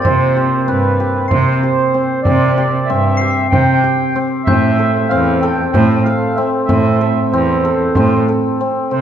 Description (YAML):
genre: contemporary instrumental, chamber music in an uneven meter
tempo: 190 BPM (eighths)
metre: 7/8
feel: straight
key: C major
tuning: A4 = 441 Hz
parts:
  - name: mellow accordion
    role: melody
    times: 0.0-9.0 s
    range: B4 to G5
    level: -18 LUFS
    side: right 5 dB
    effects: none
  - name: hammered dulcimer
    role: arpeggios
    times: 0.0-9.0 s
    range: Bb3 to A4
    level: -16 LUFS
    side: left 3 dB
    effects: none
  - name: bright cello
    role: bass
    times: 0.0-9.0 s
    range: E2 to C3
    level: -16 LUFS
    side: right 2 dB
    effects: none
  - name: frame drum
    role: percussion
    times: 0.0-8.4 s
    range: none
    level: -20 LUFS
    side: right 1 dB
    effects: none
  - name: glockenspiel with hard plastic mallets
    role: texture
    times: 0.0-6.8 s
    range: G6 to C7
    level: -26 LUFS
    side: left 8 dB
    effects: none
room: moderate concert hall reverb, RT60 2.2 s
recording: dark, warm production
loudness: -12 LUFS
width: side -9 dB against mid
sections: 0.0-8.9 A section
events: none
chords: 0.0 C5; 4.5 Am